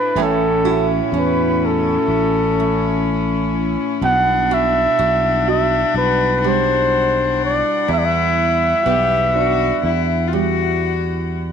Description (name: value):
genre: acoustic folk-pop ballad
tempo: 62 BPM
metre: 4/4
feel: straight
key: E minor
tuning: A4 = 445 Hz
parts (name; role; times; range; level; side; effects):
- warm flugelhorn; melody; 0.0-10.8 s; A4 to F#5; -18 LUFS; equal; none
- warm cello; second line; 0.0-11.3 s; C#4 to G4; -22 LUFS; left 12 dB; none
- nylon-string guitar; accompaniment; 0.0-11.5 s; E2 to F#4; -24 LUFS; right 13 dB; none
- warm chamber string section; sustained chords; 0.0-11.5 s; G3 to F#5; -28 LUFS; equal; none
- fingered electric bass; bass; 0.2-11.5 s; A1 to E2; -22 LUFS; equal; none
- felt-muted upright piano; arpeggios; 0.6-11.5 s; D4 to F#4; -28 LUFS; right 11 dB; none
room: light reverb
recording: 1960s-style stereo with parts hard left and right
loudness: -15 LUFS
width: side -7 dB against mid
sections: 0.0-11.5 A section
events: none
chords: 0.2 A; 4.0 Emadd9/B; 7.9 Emadd9